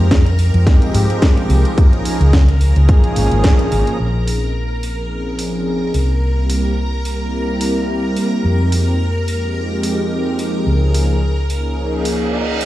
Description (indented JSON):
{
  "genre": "nu-disco, nu disco",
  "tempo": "108 BPM",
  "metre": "4/4",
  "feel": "swing 55% on 16ths",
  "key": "Bb dorian",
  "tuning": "A4 = 441 Hz",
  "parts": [
    { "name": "warm analog pad", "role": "accompaniment", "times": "0.0-12.7 s", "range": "F3 to Ab4", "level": "-20 LUFS", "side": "equal", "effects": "chorus, slapback echo" },
    { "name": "string machine, full ensemble", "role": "sustained chords", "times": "0.0-12.7 s", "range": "Bb4 to Bb5", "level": "-26 LUFS", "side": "equal", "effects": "ensemble chorus, sidechain pumping" },
    { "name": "hollow-body short-scale fingered electric bass", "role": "bass", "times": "0.0-12.7 s", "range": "Ab1 to Ab2", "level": "-16 LUFS", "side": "equal", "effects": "none" },
    { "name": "electronic kick drum", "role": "drums", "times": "0.1-3.6 s", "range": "none", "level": "-12 LUFS", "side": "equal", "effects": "overdrive" },
    { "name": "house drum kit", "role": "drums", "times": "0.1-12.7 s", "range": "hi-hat, snare drum", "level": "-24 LUFS", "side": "equal", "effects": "overdrive" },
    { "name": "reverse cymbal", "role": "sound effects", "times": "12.0-12.7 s", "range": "none", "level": "-24 LUFS", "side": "right 7 dB", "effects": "none" },
    { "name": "warm tenor saxophone", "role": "melody", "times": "12.3-12.7 s", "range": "Eb4", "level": "-24 LUFS", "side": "right 1 dB", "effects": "none" }
  ],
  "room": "light reverb, digital ambience",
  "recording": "played on a big sound system in a bare room, large studio reverb",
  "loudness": "-14 LUFS",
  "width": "side -15 dB against mid",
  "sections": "0.0-4.0 A section; 4.0-12.7 B section",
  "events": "band accent 3.4; reverse cymbal 12.0-12.7",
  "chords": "0.0 Fm7; 1.8 Db69; 4.0 Bbm11; 5.9 C7; 8.4 Fm7; 10.7 Db69"
}